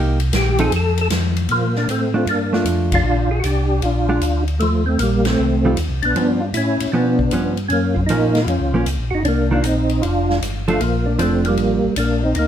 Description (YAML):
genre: soul jazz organ trio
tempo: 155 BPM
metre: 4/4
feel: swing 67% on 8ths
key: Bb major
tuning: A4 = 440 Hz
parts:
  - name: hollow-body jazz guitar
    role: accompaniment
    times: 0.0-11.8 s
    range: Eb3 to A4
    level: -21 LUFS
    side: right 2 dB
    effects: none
  - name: mellow tonewheel organ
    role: bass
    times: 0.0-12.5 s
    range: F1 to B2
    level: -20 LUFS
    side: equal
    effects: slow rotary speaker
  - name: swinging big-band drum kit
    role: drums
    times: 0.2-12.5 s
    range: hi-hat, kick drum, ride cymbal, snare drum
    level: -27 LUFS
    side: left 1 dB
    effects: none
  - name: percussive tonewheel organ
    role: melody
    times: 0.4-12.5 s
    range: F3 to A4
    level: -19 LUFS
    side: equal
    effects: slow rotary speaker, chorus vibrato, plate reverb
room: moderate studio reverb, RT60 0.8 s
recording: heard from further back in the room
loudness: -16 LUFS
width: side -10 dB against mid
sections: 0.0-1.5 A section; 1.5-12.5 B section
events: tonewheel organ solo 0.0-1.5; band accent 2.9, 5.2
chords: 0.0 Cm7; 0.7 F; 1.5 Bbmaj7; 3.0 Bb; 4.6 Eb69; 6.2 G7#11; 7.7 Gbmaj7; 9.3 Cm9; 10.0 F69; 10.8 Bbmaj7